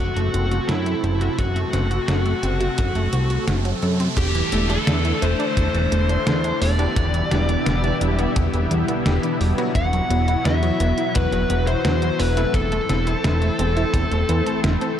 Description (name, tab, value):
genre	synthwave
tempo	86 BPM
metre	4/4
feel	straight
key	unclear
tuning	A4 = 437 Hz
part	high-gain lead guitar	melody	0.0-14.6 s	E4 to F#5	-25 LUFS	left 2 dB	distortion, digital delay
part	analog string pad	sustained chords	0.0-15.0 s	B2 to E4	-27 LUFS	equal	ensemble chorus, vintage 12-bit sampler grit, sidechain pumping
part	analog pluck	arpeggios	0.0-14.9 s	D3 to A4	-28 LUFS	right 4 dB	chorus, cassette tape, ping-pong delay
part	fat analog bass	bass	0.0-14.8 s	E1 to F#2	-21 LUFS	equal	none
part	riser and downlifter	sound effects	1.0-9.8 s	none	-32 LUFS	equal	none
part	detuned 8-bit digital drum machine	drums	0.2-15.0 s	crash cymbal, hi-hat, snare drum	-27 LUFS	equal	overdrive
part	kick drum	drums	1.4-14.1 s	none	-27 LUFS	equal	none
part	bright electric grand piano	stabs	4.5-15.0 s	F#3 to A4	-29 LUFS	left 3 dB	none
room	light reverb, digital ambience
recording	dark, warm production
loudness	-18 LUFS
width	side -10 dB against mid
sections	0.0-4.2 A section; 4.2-15.0 B section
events	riser 1.0-4.2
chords	0.0 F#dim; 4.2 Dsus2/E; 7.0 Em7; 9.8 Bsus4/E; 12.5 Am/E